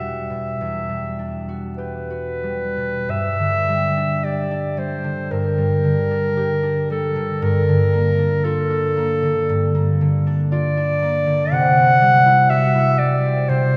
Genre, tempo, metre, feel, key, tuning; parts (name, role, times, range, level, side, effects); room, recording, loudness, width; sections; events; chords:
classical, impressionist duo for clarinet and harp; 43-62 BPM; 4/4; rubato; E minor, G dorian from 3.1 s; A4 = 441 Hz
clear clarinet; melody; 0.0-13.8 s; A4 to F#5; -22 LUFS; equal
concert harp; accompaniment; 0.0-13.8 s; E2 to G4; -22 LUFS; equal
wet church reverb, RT60 3.2 s; dark, warm production; -19 LUFS; mono
0.0-3.1 A section; 3.1-13.8 B section
0.0 Em9; 3.1 Gm; 7.4 Bbmaj7/G; 11.5 C(#11)